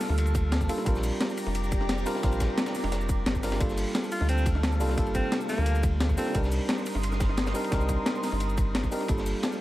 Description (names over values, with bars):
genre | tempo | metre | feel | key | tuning
liquid drum and bass | 175 BPM | 4/4 | straight | G minor | A4 = 439 Hz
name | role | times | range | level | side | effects
mellow tine electric piano | accompaniment | 0.0-9.6 s | G3 to Bb4 | -32 LUFS | right 1 dB | tape echo
lush unison pad | sustained chords | 0.0-9.6 s | G4 to Eb6 | -38 LUFS | equal | chorus, phaser, sidechain pumping
breakbeat sampler-style drum kit | drums | 0.0-9.6 s | cabasa, hi-hat, snare drum | -31 LUFS | left 1 dB | overdrive
crunchy breakbeat drum kit | drums | 0.0-9.5 s | hi-hat, ride cymbal, snare drum | -39 LUFS | equal | high-pass filter on cymbals, high-pass filter on hats, high-pass filter on snare, high-pass filter on room
warm sub bass | bass | 0.1-9.3 s | F1 to D2 | -28 LUFS | equal | none
electronic kick drum | drums | 0.3-9.2 s | none | -28 LUFS | equal | none
edgy alto saxophone | melody | 4.1-6.4 s | Bb3 to F4 | -35 LUFS | equal | dub echo
room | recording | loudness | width
small room ambience | none | -25 LUFS | side -16 dB against mid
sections
0.0-9.6 A section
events
none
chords
0.0 Gm9; 0.9 Bb6; 3.6 Gm9; 6.3 Cm7; 9.1 Gm9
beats
0.18 0.52 | 0.86 1.21 1.55 1.89 | 2.23 2.58 2.92 3.26 | 3.60 3.95 4.29 4.63 | 4.98 5.32 5.66 6.00 | 6.35 6.69 7.03 7.38 | 7.72 8.06 8.40 8.75 | 9.09 9.43